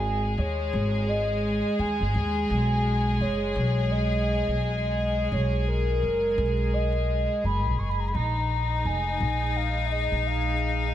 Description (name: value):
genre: trip hop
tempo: 85 BPM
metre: 4/4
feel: swing 59% on 16ths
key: unclear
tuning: A4 = 438 Hz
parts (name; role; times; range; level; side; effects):
- pure breathy sine lead; melody; 0.0-10.9 s; A#4 to C#6; -29 LUFS; equal; wide subtle chorus, dub echo
- rich chamber string section; sustained chords; 0.0-10.9 s; G#3 to G#4; -29 LUFS; left 1 dB; none
- upright bass; bass; 0.0-10.9 s; E#1 to D#2; -26 LUFS; equal; none
- bowed-like drone; texture; 8.7-10.9 s; G#3 to G#4; -39 LUFS; right 1 dB; built-in reverb
room: light reverb, small room ambience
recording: vinyl crackle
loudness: -23 LUFS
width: side -12 dB against mid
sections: 0.0-10.9 A section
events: none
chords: 0.0 G#5; 2.5 Bmaj9; 8.1 A#5